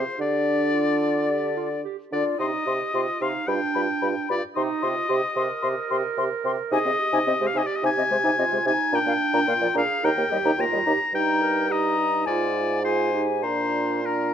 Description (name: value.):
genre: quick classical-period movement for wind quintet.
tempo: 110 BPM.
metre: 4/4.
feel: rubato.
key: C minor, Eb major from 6.7 s.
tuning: A4 = 440 Hz.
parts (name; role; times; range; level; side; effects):
bright oboe; second line; 0.0-14.3 s; Bb4 to Bb5; -26 LUFS; left 3 dB; none.
clear French horn; accompaniment; 0.0-14.3 s; F3 to G4; -30 LUFS; right 1 dB; none.
warm clarinet; accompaniment; 0.0-14.3 s; D4 to Bb4; -30 LUFS; right 10 dB; none.
mellow bassoon; bass; 0.0-14.3 s; Eb2 to D3; -27 LUFS; right 3 dB; none.
silver concert flute; melody; 0.2-14.3 s; C5 to C6; -28 LUFS; left 8 dB; none.
room: light reverb.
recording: close, detailed microphones.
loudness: -21 LUFS.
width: side -9 dB against mid.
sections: 0.0-14.3 A section.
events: none.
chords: 0.2 G5/D; 2.4 Cm; 3.5 G7(no3); 4.6 Cm; 6.7 Ab/C; 8.9 Bb; 10.0 Eb; 11.1 Eb/G; 12.3 Fm/Ab; 13.4 Bb.